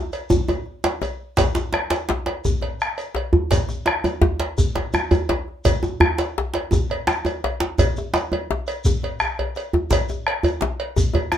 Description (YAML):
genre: west african traditional, West African drum ensemble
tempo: 112 BPM (dotted quarters)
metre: 12/8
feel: straight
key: none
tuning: none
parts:
  - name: bombo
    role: percussion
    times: 0.1-11.4 s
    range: none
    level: -23 LUFS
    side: right 1 dB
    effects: none
  - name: cowbell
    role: percussion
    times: 0.1-11.3 s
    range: none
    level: -27 LUFS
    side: right 3 dB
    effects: none
  - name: djembe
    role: percussion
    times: 0.1-11.3 s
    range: none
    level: -25 LUFS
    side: left 3 dB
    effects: none
  - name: shekere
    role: percussion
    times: 0.1-11.4 s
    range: none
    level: -30 LUFS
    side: left 1 dB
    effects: none
  - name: djembe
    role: percussion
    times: 0.3-11.4 s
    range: none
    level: -21 LUFS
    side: right 1 dB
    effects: none
room: moderate small room reverb, RT60 0.5 s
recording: minimal, uncompressed stereo recording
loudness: -19 LUFS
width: side -10 dB against mid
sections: 0.0-1.4 A section; 1.4-11.4 B section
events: drum fill 0.0-1.4, 9.2-9.9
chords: none